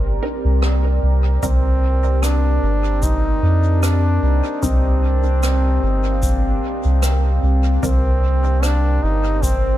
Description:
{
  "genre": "ambient dub",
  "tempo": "75 BPM",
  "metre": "4/4",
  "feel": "swing 55% on 16ths",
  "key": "C minor",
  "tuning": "A4 = 442 Hz",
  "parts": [
    { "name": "deep dark ambient pad", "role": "sustained chords", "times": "0.0-9.8 s", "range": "C4 to D5", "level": "-26 LUFS", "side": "equal", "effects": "chorus, built-in reverb" },
    { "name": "filtered dub chord stab", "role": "stabs", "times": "0.0-9.8 s", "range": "Eb3 to D5", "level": "-30 LUFS", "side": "equal", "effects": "none" },
    { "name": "soft dub sub bass", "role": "bass", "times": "0.0-9.8 s", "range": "G1 to F2", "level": "-16 LUFS", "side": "equal", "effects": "none" },
    { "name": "rim click and shaker", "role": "drums", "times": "0.6-9.6 s", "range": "none", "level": "-30 LUFS", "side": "right 1 dB", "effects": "dub echo" },
    { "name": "clear trombone", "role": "melody", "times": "1.4-9.8 s", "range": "C4 to Eb4", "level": "-23 LUFS", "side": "equal", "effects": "dub echo" },
    { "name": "electronic kick drum", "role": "drums", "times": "1.4-9.6 s", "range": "none", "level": "-23 LUFS", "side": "equal", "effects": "none" },
    { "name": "vibraphone with soft mallets", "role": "arpeggios", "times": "6.1-9.8 s", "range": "C4 to G5", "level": "-30 LUFS", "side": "left 3 dB", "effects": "dub echo" }
  ],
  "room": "studio reverb",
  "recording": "none",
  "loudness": "-15 LUFS",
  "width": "side -14 dB against mid",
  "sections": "0.0-9.8 A section",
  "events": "none",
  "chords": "0.0 Cm9",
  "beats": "0.63 | 1.43 2.23 3.03 3.83 | 4.63 5.43 6.23 7.03 | 7.83 8.63 9.43"
}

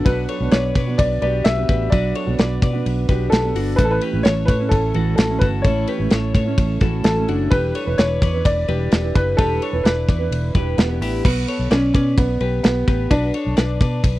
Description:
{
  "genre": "jangly indie pop",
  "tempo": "129 BPM",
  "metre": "4/4",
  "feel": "straight",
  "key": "B minor",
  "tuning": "A4 = 440 Hz",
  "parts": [
    { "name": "dark upright piano", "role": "melody", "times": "0.0-14.0 s", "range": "B3 to E5", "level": "-23 LUFS", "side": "equal", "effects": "none" },
    { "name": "fingerpicked steel-string acoustic guitar", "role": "accompaniment", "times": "0.0-11.3 s", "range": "E3 to B4", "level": "-26 LUFS", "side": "right 6 dB", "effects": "none" },
    { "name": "twelve-string electric guitar", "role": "arpeggios", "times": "0.0-14.2 s", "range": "D4 to D5", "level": "-27 LUFS", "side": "left 5 dB", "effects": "none" },
    { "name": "vintage muted fingered electric bass", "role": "bass", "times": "0.1-14.2 s", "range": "E1 to B2", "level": "-22 LUFS", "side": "equal", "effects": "none" },
    { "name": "modern studio drum kit", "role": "drums", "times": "0.1-14.1 s", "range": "crash cymbal, hi-hat, kick drum, ride cymbal, snare drum", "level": "-17 LUFS", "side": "equal", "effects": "none" }
  ],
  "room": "little or no reverb",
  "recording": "dry, close 1970s-style studio recording",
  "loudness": "-16 LUFS",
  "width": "side -16 dB against mid",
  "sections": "0.0-11.2 A section; 11.2-14.2 A section",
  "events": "none",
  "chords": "0.0 Bm; 3.8 A; 7.5 Em7; 11.2 Bm",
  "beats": "| 0.06 0.52 0.99 1.45 | 1.92 2.39 2.85 3.32 | 3.79 4.25 4.72 5.18 | 5.65 6.12 6.58 7.05 | 7.52 7.98 8.45 8.92 | 9.38 9.85 10.32 10.78 | 11.25 11.71 12.18 12.64 | 13.11 13.57 14.04"
}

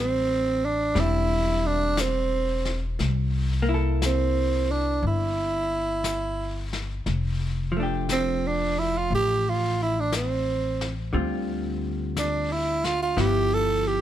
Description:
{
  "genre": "jazz ballad",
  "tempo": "59 BPM",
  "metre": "4/4",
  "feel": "swing 66% on 8ths",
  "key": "C major",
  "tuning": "A4 = 441 Hz",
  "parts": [
    { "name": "growling tenor saxophone", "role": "melody", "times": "0.0-14.0 s", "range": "C4 to A4", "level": "-25 LUFS", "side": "right 3 dB", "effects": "none" },
    { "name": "vintage hollow-body jazz guitar", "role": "accompaniment", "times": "0.0-14.0 s", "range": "D3 to A4", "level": "-30 LUFS", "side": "left 1 dB", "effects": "none" },
    { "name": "upright bass", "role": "bass", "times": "0.0-14.0 s", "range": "E1 to D2", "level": "-27 LUFS", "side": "left 1 dB", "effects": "none" },
    { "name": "vintage brush drum kit", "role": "drums", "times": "1.0-14.0 s", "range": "brushed snare drum, hi-hat, snare drum", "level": "-35 LUFS", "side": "left 4 dB", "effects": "none" }
  ],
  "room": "little or no reverb",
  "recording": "none",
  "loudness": "-23 LUFS",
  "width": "side -12 dB against mid",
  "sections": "0.0-14.0 A section",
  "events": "none",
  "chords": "0.0 Am7; 3.0 C6; 7.1 F69; 11.1 Dm7; 13.2 G6",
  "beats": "0.96 1.97 | 2.99 4.01 5.03 6.04 | 7.06 8.08 9.10 10.12 | 11.14 12.16 13.18"
}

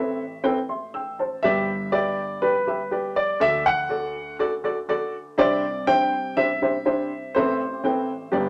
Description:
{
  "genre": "soul",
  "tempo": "122 BPM",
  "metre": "4/4",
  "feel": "straight",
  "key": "unclear",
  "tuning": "A4 = 441 Hz",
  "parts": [
    { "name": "warm baby grand piano", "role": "melody", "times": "0.0-8.3 s", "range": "B4 to G5", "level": "-26 LUFS", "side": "equal", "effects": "none" },
    { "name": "dark upright piano", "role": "accompaniment", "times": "0.0-8.5 s", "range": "G1 to E6", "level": "-26 LUFS", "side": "equal", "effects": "none" }
  ],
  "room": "moderate club reverb, RT60 0.6 s",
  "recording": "none",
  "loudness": "-24 LUFS",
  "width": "mono",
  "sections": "0.0-8.5 A section",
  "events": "none",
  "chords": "0.0 Amadd9; 1.4 G; 3.4 D; 5.4 Cadd9; 7.3 Amadd9",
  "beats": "0.45 0.94 | 1.44 1.93 2.42 2.92 | 3.41 3.90 4.39 4.89 | 5.38 5.87 6.36 6.86 | 7.35 7.84 8.34"
}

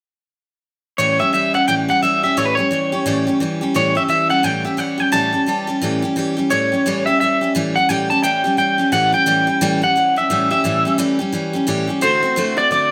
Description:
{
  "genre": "rock",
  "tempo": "174 BPM",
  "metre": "4/4",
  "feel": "swing 61% on 8ths",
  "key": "A mixolydian",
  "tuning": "A4 = 440 Hz",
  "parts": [
    { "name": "electric guitar through a small old amp", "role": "melody", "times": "1.0-12.9 s", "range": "B4 to A5", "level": "-19 LUFS", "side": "equal", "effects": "harmonic tremolo" },
    { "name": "picked steel-string acoustic guitar", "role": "accompaniment", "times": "1.0-12.9 s", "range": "A2 to G4", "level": "-21 LUFS", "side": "equal", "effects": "none" }
  ],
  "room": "light reverb",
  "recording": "none",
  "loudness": "-17 LUFS",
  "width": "mono",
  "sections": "1.0-6.5 A section; 6.5-12.9 B section",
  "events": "none",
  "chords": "1.0 A7; 12.0 D7",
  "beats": "| 0.98 1.33 1.68 2.02 | 2.37 2.71 3.06 3.40 | 3.75 4.09 4.44 4.79 | 5.13 5.47 5.82 6.17 | 6.51 6.86 7.20 7.54 | 7.89 8.23 8.58 8.92 | 9.27 9.61 9.96 10.30 | 10.65 10.99 11.34 11.68 | 12.03 12.38 12.72"
}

